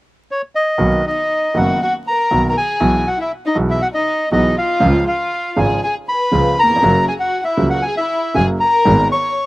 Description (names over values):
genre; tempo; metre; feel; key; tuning
tango; 119 BPM; 4/4; rubato; B major; A4 = 440 Hz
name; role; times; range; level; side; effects
bandoneon; melody; 0.3-9.5 s; C#5 to C#6; -16 LUFS; equal; none
clear upright piano; accompaniment; 0.8-9.1 s; F#1 to G#4; -18 LUFS; right 1 dB; none
bright double bass; bass; 0.8-9.1 s; F#1 to C#2; -19 LUFS; right 1 dB; none
warm studio violin section; second line; 1.1-9.5 s; D#4 to C#5; -23 LUFS; left 3 dB; none
room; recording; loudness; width
little or no reverb; recorded outdoors, with no room sound, vinyl crackle; -14 LUFS; side -19 dB against mid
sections
0.8-9.5 A section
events
none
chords
0.0 N.C.; 0.8 Bmaj7; 2.8 Eadd9/B; 4.8 C#; 6.8 F#; 8.9 G#madd9